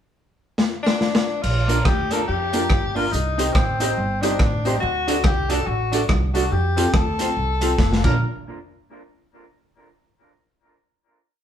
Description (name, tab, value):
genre	ska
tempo	142 BPM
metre	4/4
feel	swing 61% on 8ths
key	Bb major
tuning	A4 = 440 Hz
part	raw garage drum kit	drums	0.6-8.1 s	crash cymbal, hi-hat, kick drum, rim click, snare drum	-21 LUFS	equal	none
part	clear tenor saxophone	melody	0.8-8.2 s	C4 to Bb4	-24 LUFS	left 3 dB	none
part	upright bass	bass	1.4-8.2 s	F1 to F2	-24 LUFS	equal	none
part	hollow-body jazz guitar	accompaniment	1.7-8.2 s	Bb3 to D5	-27 LUFS	right 3 dB	dub echo
part	clear upright piano	stabs	1.7-8.2 s	C4 to C5	-29 LUFS	left 2 dB	none
room	moderate studio reverb, RT60 0.8 s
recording	band playing live in one room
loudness	-18 LUFS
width	side -9 dB against mid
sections	0.0-1.4 pickup bar; 1.4-8.2 head; 8.2-9.9 final hit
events	drum fill 0.6-1.4, 7.8-8.2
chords	0.0 N.C.; 1.4 Bb; 3.1 Cm; 4.8 D; 6.5 F; 8.0 Bb; 8.2 N.C.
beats	0.16 0.58 1.00 | 1.43 1.85 2.28 2.70 | 3.12 3.55 3.97 4.39 | 4.82 5.24 5.67 6.09 | 6.51 6.94 7.36 7.79